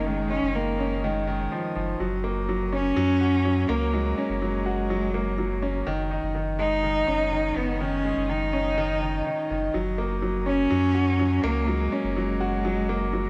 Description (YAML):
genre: piano and strings electronica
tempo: 124 BPM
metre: 4/4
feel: straight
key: F# major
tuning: A4 = 440 Hz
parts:
  - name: rich cello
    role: melody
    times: 0.0-13.3 s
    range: G#3 to D#4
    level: -29 LUFS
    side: equal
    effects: shimmer reverb, delay
  - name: bright concert grand piano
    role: riff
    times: 0.0-13.3 s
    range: D#3 to F#4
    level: -30 LUFS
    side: equal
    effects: shimmer reverb, delay
  - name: warm sub bass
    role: bass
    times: 0.0-13.3 s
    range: F#1 to F#2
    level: -31 LUFS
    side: equal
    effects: none
room: moderate lush hall reverb, RT60 2.0 s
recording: none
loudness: -25 LUFS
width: mono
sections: 0.0-13.3 A section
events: none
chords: 0.0 C#add9/F#; 2.0 F#add9; 5.9 C#sus2/F#; 9.7 F#add9